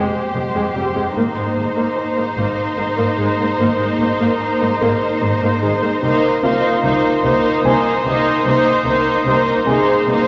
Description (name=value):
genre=cinematic, suspense film score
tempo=74 BPM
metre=3/4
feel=straight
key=unclear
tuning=A4 = 438 Hz
part: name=muted symphonic violin section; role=melody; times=0.0-10.3 s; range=C5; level=-22 LUFS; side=equal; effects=none
part: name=muted symphonic violin section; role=second line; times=0.0-10.3 s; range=Eb4 to G4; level=-24 LUFS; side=equal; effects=none
part: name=muted symphonic viola section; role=accompaniment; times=0.0-10.3 s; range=G3 to Bb3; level=-23 LUFS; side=equal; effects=none
part: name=warm concert grand piano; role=texture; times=0.0-10.3 s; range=F4 to C6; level=-28 LUFS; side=equal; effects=none
part: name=muted symphonic cello section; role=bass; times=0.3-10.2 s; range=F2 to C3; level=-27 LUFS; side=equal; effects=none
part: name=muted symphonic double bass section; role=bass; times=0.3-10.1 s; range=F1 to C2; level=-30 LUFS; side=equal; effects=none
part: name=muted symphonic violin section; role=texture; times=6.0-10.3 s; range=C6 to G6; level=-26 LUFS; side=equal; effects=none
room=wet scoring stage reverb, RT60 1.8 s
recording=nothing above 7.8 kHz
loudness=-17 LUFS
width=mono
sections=0.0-10.3 A section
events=none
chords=0.0 Fmadd9; 1.2 Abadd9; 6.0 Cm7